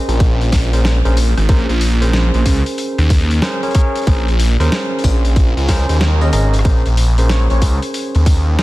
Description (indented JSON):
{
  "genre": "glitch hop",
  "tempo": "93 BPM",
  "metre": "4/4",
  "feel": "swing 64% on 16ths",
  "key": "Bb minor",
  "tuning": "A4 = 436 Hz",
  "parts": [
    { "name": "overdriven tine electric piano", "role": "stabs", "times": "0.0-8.6 s", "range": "Db4 to Eb5", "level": "-22 LUFS", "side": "equal", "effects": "vintage 12-bit sampler grit, sidechain pumping, ping-pong delay" },
    { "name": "phased detuned saw bass", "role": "bass", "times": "0.1-8.6 s", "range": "Ab1 to Eb2", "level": "-13 LUFS", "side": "equal", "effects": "phaser, tube saturation" },
    { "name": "boom bap sampler-style drum kit", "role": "drums", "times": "0.1-8.6 s", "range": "hi-hat, rim click, snare drum", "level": "-23 LUFS", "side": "equal", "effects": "none" },
    { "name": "electronic kick drum", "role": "drums", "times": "0.2-8.4 s", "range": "none", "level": "-14 LUFS", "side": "equal", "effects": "overdrive" },
    { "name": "plucky unison lead", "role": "melody", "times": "7.3-7.6 s", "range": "Db5", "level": "-30 LUFS", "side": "left 2 dB", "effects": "analog chorus, cassette tape, ping-pong delay" }
  ],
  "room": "digital ambience",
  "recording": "dense, heavily limited modern master, vinyl crackle",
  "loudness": "-12 LUFS",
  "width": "side -18 dB against mid",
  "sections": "0.0-8.6 A section",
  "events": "none",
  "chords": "0.0 Bbm9",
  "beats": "0.20 0.85 | 1.49 2.14 2.78 3.43 | 4.07 4.72 5.36 6.01 | 6.65 7.30 7.94 8.59"
}